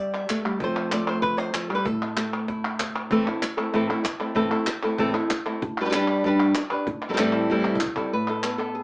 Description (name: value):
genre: flamenco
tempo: 192 BPM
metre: 4/4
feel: straight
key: A minor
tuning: A4 = 442 Hz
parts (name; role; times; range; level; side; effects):
- flamenco guitar; melody; 0.0-8.8 s; A2 to E5; -23 LUFS; equal; none
- cajon; percussion; 0.1-8.0 s; none; -34 LUFS; equal; none
- palmas hand claps; percussion; 0.1-8.8 s; none; -30 LUFS; equal; none
room: wet small room reverb, RT60 0.5 s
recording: band playing live in one room, small speaker sound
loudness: -22 LUFS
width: side -25 dB against mid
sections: 0.0-3.1 A section; 3.1-8.1 B section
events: drum fill 7.7-8.1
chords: 0.0 G5; 0.6 F; 1.9 Am; 5.6 G; 6.9 Am7; 8.1 N.C.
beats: 0.28 | 0.60 0.91 1.23 1.54 | 1.85 2.17 2.48 2.79 | 3.10 3.42 3.73 4.04 | 4.36 4.67 4.99 5.30 | 5.61 5.93 6.24 6.55 | 6.87 7.18 7.49 7.81 | 8.12 8.43 8.75